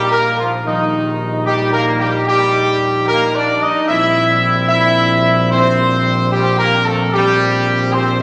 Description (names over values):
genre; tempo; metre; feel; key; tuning
classical; 74 BPM; 4/4; straight; unclear; A4 = 441 Hz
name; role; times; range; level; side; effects
dark trumpet section; melody; 0.0-8.2 s; Eb4 to E5; -18 LUFS; equal; none
clear trombone section; sustained chords; 0.0-8.1 s; Eb3 to E4; -21 LUFS; equal; none
mellow French horn section; sustained chords; 0.0-8.2 s; G3 to Eb4; -26 LUFS; equal; none
mellow tuba; bass; 0.0-8.2 s; Bb1; -22 LUFS; equal; none
room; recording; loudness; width
wet concert hall reverb, RT60 1.8 s; none; -15 LUFS; mono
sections
0.0-8.2 A section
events
none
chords
0.0 Eb/Bb; 3.9 C/Bb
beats
| 0.66 1.47 2.28 3.09 | 3.89 4.70 5.51 6.32 | 7.13 7.94